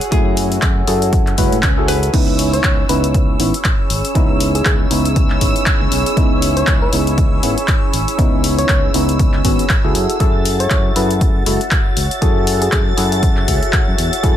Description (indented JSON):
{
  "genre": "deep house",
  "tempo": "119 BPM",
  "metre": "4/4",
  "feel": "swing 58% on 16ths",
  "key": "C# minor",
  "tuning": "A4 = 440 Hz",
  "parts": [
    { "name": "vintage hollow-body jazz guitar", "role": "melody", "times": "0.0-2.4 s", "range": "G#4 to B4", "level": "-26 LUFS", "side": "left 1 dB", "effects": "ping-pong delay" },
    { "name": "warm analog pad", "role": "sustained chords", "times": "0.0-14.4 s", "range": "C#5 to E6", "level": "-26 LUFS", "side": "right 1 dB", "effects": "chorus, vintage 12-bit sampler grit, sidechain pumping" },
    { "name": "punchy analog drum machine", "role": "drums", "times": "0.0-14.4 s", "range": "crash cymbal, handclaps, hi-hat", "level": "-21 LUFS", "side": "left 1 dB", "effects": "none" },
    { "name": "ethereal airy pad", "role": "texture", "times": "0.0-14.4 s", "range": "C#4 to C#5", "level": "-27 LUFS", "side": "equal", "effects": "ensemble chorus, built-in reverb, sidechain pumping" },
    { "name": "percussive organ stab", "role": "stabs", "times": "0.1-14.4 s", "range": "D#3 to B4", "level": "-20 LUFS", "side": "equal", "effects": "chorus, sidechain pumping" },
    { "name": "overdriven fingered electric bass", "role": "bass", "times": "0.1-14.4 s", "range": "F#1 to A2", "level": "-20 LUFS", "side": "equal", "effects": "sidechain pumping" },
    { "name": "electronic kick drum", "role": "drums", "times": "0.1-14.4 s", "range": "none", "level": "-16 LUFS", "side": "equal", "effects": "none" },
    { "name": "swell", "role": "sound effects", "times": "1.3-2.1 s", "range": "none", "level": "-28 LUFS", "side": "equal", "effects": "none" },
    { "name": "string machine, violins", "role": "texture", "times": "2.1-14.4 s", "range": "E6 to A6", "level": "-27 LUFS", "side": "right 1 dB", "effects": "ensemble chorus, sidechain pumping" },
    { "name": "soft struck synth lead", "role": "melody", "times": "2.5-12.8 s", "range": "G#4 to C#5", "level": "-24 LUFS", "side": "left 1 dB", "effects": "chorus, tape echo" }
  ],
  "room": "little or no reverb",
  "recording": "none",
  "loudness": "-13 LUFS",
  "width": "side -11 dB against mid",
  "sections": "0.0-14.4 A section",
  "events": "swell 1.3-2.1",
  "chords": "0.0 F#m9; 2.1 C#m9; 10.0 F#m9",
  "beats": "| 0.12 0.62 1.13 1.63 | 2.14 2.64 3.15 3.65 | 4.15 4.66 5.16 5.67 | 6.17 6.67 7.18 7.68 | 8.19 8.69 9.20 9.70 | 10.20 10.71 11.21 11.72 | 12.22 12.72 13.23 13.73 | 14.24"
}